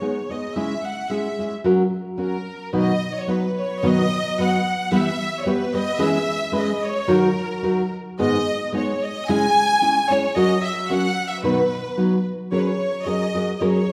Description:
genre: mexican folk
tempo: 110 BPM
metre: 2/4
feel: straight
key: B major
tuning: A4 = 440 Hz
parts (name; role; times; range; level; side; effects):
- rich studio violin section; melody; 0.0-13.9 s; A#4 to G#5; -26 LUFS; equal; none
- nylon-string guitar; accompaniment; 0.0-13.8 s; G#2 to B4; -23 LUFS; equal; none
room: wet recital hall reverb, RT60 1.5 s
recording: recorded in a church or concert hall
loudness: -22 LUFS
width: mono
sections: 0.0-3.8 A section; 3.8-12.5 A section; 12.5-13.9 B section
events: none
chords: 0.0 G#m; 0.6 C#m; 1.6 F#; 2.7 B; 4.9 Em; 6.0 C#m7/E; 7.1 D#m; 8.2 G#m; 9.3 C#m; 10.3 F#; 11.4 B; 12.5 F#add9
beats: 0.01 | 0.56 1.10 | 1.64 2.19 | 2.73 3.28 | 3.84 4.39 | 4.93 5.47 | 6.01 6.55 | 7.09 7.64 | 8.19 8.74 | 9.28 9.81 | 10.35 10.88 | 11.42 11.97 | 12.52 13.07 | 13.61

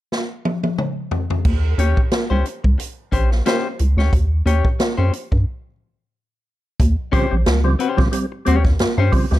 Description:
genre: funk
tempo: 90 BPM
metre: 4/4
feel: swing 56% on 16ths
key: Eb mixolydian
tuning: A4 = 440 Hz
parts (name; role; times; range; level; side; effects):
- swinging big-band drum kit; drums; 0.1-9.4 s; crash cymbal, hi-hat, kick drum, snare drum, toms; -19 LUFS; equal; none
- rubbery square bass; bass; 1.5-9.4 s; Bb1 to G2; -16 LUFS; equal; none
- clean electric guitar; accompaniment; 1.8-9.4 s; Db4 to Db5; -23 LUFS; left 6 dB; none
- percussive tonewheel organ; stabs; 7.1-9.4 s; Db3 to C4; -22 LUFS; right 2 dB; overdrive, chorus vibrato, fast rotary speaker
room: light reverb, small room ambience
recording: dark, warm production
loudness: -16 LUFS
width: side -15 dB against mid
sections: 0.0-1.5 A section; 1.5-6.8 B section; 6.8-9.4 C section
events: drum fill 0.1-1.5; break 5.5-6.8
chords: 0.0 N.C.; 1.5 Eb6; 6.8 Eb13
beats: 0.12 0.79 | 1.45 2.12 2.79 3.46 | 4.13 4.79 5.46 6.13 | 6.79 7.46 8.13 8.79

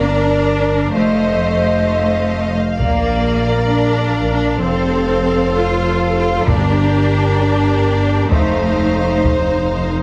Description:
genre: cinematic, epic orchestral film score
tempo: 65 BPM (dotted quarters)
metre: 6/8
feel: straight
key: unclear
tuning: A4 = 440 Hz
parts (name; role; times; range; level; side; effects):
- rich chamber violin section; melody; 0.0-9.9 s; D5 to F5; -31 LUFS; equal; none
- warm symphonic violin section; second line; 0.0-9.9 s; Bb4 to Eb5; -28 LUFS; equal; none
- clear symphonic viola section; accompaniment; 0.0-9.9 s; Eb4 to C5; -25 LUFS; equal; none
- mellow French horn section; sustained chords; 0.0-9.8 s; Eb4 to Eb5; -24 LUFS; equal; none
- rich symphonic cello section; bass; 0.0-9.2 s; A3 to F4; -21 LUFS; equal; none
- rich symphonic double bass section; bass; 0.0-9.9 s; F1 to Bb1; -21 LUFS; equal; none
- taiko ensemble; drums; 2.8-9.8 s; none; -22 LUFS; equal; none
- timpani; percussion; 6.5-7.4 s; G2; -23 LUFS; equal; none
room: moderate scoring stage reverb, RT60 1.9 s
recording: heavily compressed radio sound, multiband compression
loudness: -16 LUFS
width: mono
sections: 0.0-10.0 A section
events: none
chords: 0.0 Gm; 0.9 F7; 2.8 Bb; 4.6 F; 6.5 Gm; 8.3 F7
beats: 0.03 | 0.95 1.87 | 2.79 3.71 | 4.64 5.56 | 6.48 7.40 | 8.32 9.24

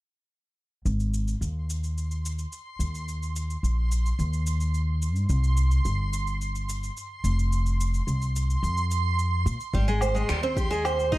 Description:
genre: folktronica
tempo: 108 BPM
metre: 4/4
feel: straight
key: Ab major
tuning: A4 = 440 Hz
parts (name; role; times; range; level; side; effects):
- backwards swelling texture; texture; 2.1-11.2 s; C6; -35 LUFS; right 4 dB; built-in reverb
- upright bass; bass; 0.9-11.2 s; F1 to Bb2; -25 LUFS; equal; none
- electronic cabasa, woodblock and finger snaps; drums; 0.9-11.2 s; none; -37 LUFS; left 1 dB; none
- picked twelve-string acoustic guitar; arpeggios; 9.7-11.2 s; G3 to C5; -26 LUFS; right 2 dB; tape echo
- electronic kick drum; drums; 9.7-11.2 s; none; -27 LUFS; equal; none
room: little or no reverb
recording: dark, warm production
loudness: -24 LUFS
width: side -17 dB against mid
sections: 0.9-11.2 A section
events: none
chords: 0.9 Ab; 3.1 Eb5; 5.3 C5; 7.5 F5; 9.7 Abmaj7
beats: | 0.85 1.41 1.96 2.52 | 3.07 3.63 4.18 4.74 | 5.30 5.85 6.41 6.96 | 7.52 8.07 8.63 9.19 | 9.74 10.30 10.85

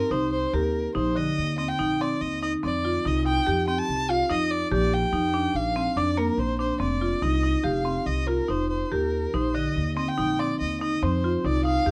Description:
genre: contemporary instrumental, chamber music in an uneven meter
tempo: 143 BPM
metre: 5/4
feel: straight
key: unclear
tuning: A4 = 440 Hz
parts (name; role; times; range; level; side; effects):
- clear violin; melody; 0.0-11.9 s; Bb4 to A5; -30 LUFS; equal; none
- marimba with hard mallets; arpeggios; 0.0-11.9 s; D3 to G4; -28 LUFS; equal; none
- upright bass; bass; 0.1-11.9 s; F1 to F2; -31 LUFS; equal; none
room: light reverb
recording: worn, warbling old tape, cassette tape, warbly pitch drift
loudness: -25 LUFS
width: mono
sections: 0.5-11.9 A section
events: none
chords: 0.0 Cm; 0.5 Eb6; 2.6 Fsus2; 4.7 Bb6; 6.8 F5; 8.9 Eb6; 11.0 F5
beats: 0.11 | 0.54 0.96 1.38 1.80 2.22 | 2.63 3.05 3.47 3.88 4.30 | 4.71 5.13 5.54 5.96 6.38 | 6.79 7.21 7.63 8.05 8.48 | 8.91 9.33 9.76 10.18 10.61 | 11.03 11.45 11.87

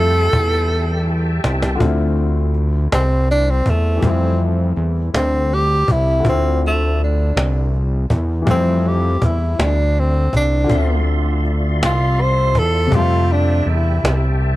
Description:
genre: slow six-eight R&B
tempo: 54 BPM (dotted quarters)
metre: 6/8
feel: straight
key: D minor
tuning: A4 = 440 Hz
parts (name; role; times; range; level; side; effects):
- breathy tenor saxophone; melody; 0.0-14.4 s; A3 to C5; -20 LUFS; equal; tape echo
- warm grand piano; accompaniment; 0.0-14.6 s; C3 to E5; -26 LUFS; left 5 dB; none
- tonewheel organ; sustained chords; 0.0-1.8, 10.7-14.6 s; F4 to C6; -27 LUFS; right 1 dB; chorus vibrato, slow rotary speaker
- fat analog bass; bass; 0.0-14.6 s; C2 to F2; -17 LUFS; equal; none
- cajon; drums; 0.3-14.5 s; none; -20 LUFS; equal; none
room: small room reverb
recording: none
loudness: -14 LUFS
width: side -17 dB against mid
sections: 0.0-1.8 A section; 1.8-14.6 B section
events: drum fill 0.7-1.8; tenor saxophone solo 1.8-14.6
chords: 0.0 Fmaj9; 1.8 Dm9; 4.0 Fmaj9; 6.2 Dm9; 8.5 Fmaj9; 10.7 Dm9; 12.9 Fmaj9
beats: 0.69 | 1.81 2.92 | 4.03 5.14 | 6.25 7.36 | 8.47 9.58 | 10.69 11.81 | 12.92 14.03

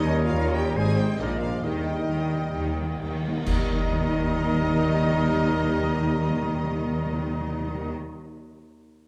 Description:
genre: classical, dramatic, fast romantic movement for symphony orchestra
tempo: 126-146 BPM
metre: 4/4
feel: rubato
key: Eb major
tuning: A4 = 444 Hz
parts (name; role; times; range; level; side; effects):
- rich symphonic violin section; melody; 0.0-7.9 s; C5 to G5; -44 LUFS; equal; none
- hollow concert flute; second line; 0.0-7.9 s; Bb4 to Bb5; -37 LUFS; equal; none
- mellow clarinet; second line; 0.0-7.9 s; Bb4 to Db5; -41 LUFS; equal; none
- warm oboe; second line; 0.0-7.9 s; D5 to Eb5; -42 LUFS; equal; none
- warm symphonic violin section; second line; 0.0-7.9 s; Eb5 to Ab5; -43 LUFS; equal; none
- mellow bassoon; accompaniment; 0.0-7.9 s; G3 to Ab3; -40 LUFS; equal; none
- rich studio viola section; accompaniment; 0.0-7.9 s; G3 to Bb4; -40 LUFS; equal; none
- dark trombone section; sustained chords; 0.0-7.9 s; F3 to Eb4; -40 LUFS; equal; none
- mellow French horn section; sustained chords; 0.0-7.9 s; Eb4 to Ab4; -34 LUFS; equal; none
- concert harp; arpeggios; 0.0-8.2 s; Ab2 to Eb5; -40 LUFS; equal; none
- mellow tuba; bass; 0.0-7.9 s; Ab1 to Eb2; -33 LUFS; equal; none
- rich symphonic cello section; bass; 0.0-7.9 s; Eb2 to Eb3; -34 LUFS; equal; none
- warm studio double bass section; bass; 0.0-7.9 s; Ab1 to Eb2; -32 LUFS; equal; none
- timpani; percussion; 0.0-7.9 s; Eb3; -34 LUFS; equal; none
- clash cymbals and concert bass drum; percussion; 3.5-4.4 s; none; -34 LUFS; equal; none
room: moderate scoring stage reverb, RT60 1.6 s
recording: dark, warm production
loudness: -25 LUFS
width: mono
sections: 0.0-3.5 A section; 3.5-7.3 B section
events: slowing down 0.0-3.5; timpani fill 1.6-3.5; band accent 3.5-3.9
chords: 0.0 Eb7; 0.8 Abmaj7; 1.2 Bb7; 1.6 Eb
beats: 0.35 0.77 1.20 | 1.64 2.09 2.54 3.00 | 3.48 3.95 4.42 4.89 | 5.36 5.83 6.31 6.78

